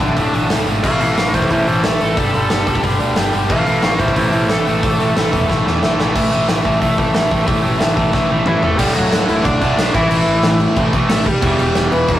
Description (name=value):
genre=punk rock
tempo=182 BPM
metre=4/4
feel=straight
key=unclear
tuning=A4 = 440 Hz
part: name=bluesy overdriven lead guitar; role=melody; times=0.0-5.5, 8.5-12.2 s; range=E3 to F5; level=-19 LUFS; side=equal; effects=distortion
part: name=biting overdriven guitar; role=riff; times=0.0-12.2 s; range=D2 to A3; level=-17 LUFS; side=equal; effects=none
part: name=modern bright picked electric bass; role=bass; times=0.0-12.2 s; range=D1 to E2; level=-22 LUFS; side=equal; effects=none
part: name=big rock drum kit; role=drums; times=0.0-12.2 s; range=crash cymbal, hi-hat, kick drum, snare drum, toms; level=-19 LUFS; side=equal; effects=none
room=moderate studio reverb, RT60 0.6 s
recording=rough rehearsal-room recording, warm saturation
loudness=-13 LUFS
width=side -12 dB against mid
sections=0.0-6.2 A section; 6.2-8.8 B section; 8.8-12.2 C section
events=lead electric guitar solo 0.0-6.2; drum fill 5.5-6.2, 8.1-8.8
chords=0.0 D5; 0.8 A5; 2.2 G5; 3.5 A5; 8.8 D; 9.9 A5; 11.4 Em